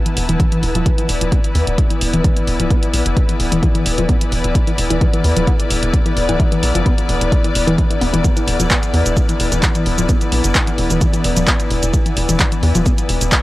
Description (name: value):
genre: driving peak-time techno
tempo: 130 BPM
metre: 4/4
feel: straight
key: unclear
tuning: A4 = 437 Hz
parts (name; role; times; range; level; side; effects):
- metallic inharmonic drone; drone; 0.0-13.4 s; E3 to B3; -24 LUFS; equal; chorus, built-in reverb, sidechain pumping
- clear symphonic string section; texture; 0.0-13.4 s; E4 to A5; -23 LUFS; left 2 dB; sidechain pumping
- tight sequenced synth; riff; 0.1-12.9 s; E3 to B3; -21 LUFS; left 1 dB; chorus, tube saturation, sidechain pumping, analog delay
- punchy analog drum machine; drums; 0.1-13.4 s; handclaps, hi-hat, shaker; -21 LUFS; equal; sidechain pumping on hats, sidechain pumping on perc
- tight sequencer bass; bass; 0.2-13.3 s; D1 to E2; -18 LUFS; equal; sidechain pumping
- electronic kick drum; drums; 0.4-13.4 s; none; -16 LUFS; equal; none
room: little or no reverb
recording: dry, gritty hardware recording, cassette tape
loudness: -13 LUFS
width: side -17 dB against mid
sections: 0.0-13.4 A section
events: none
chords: 0.0 E5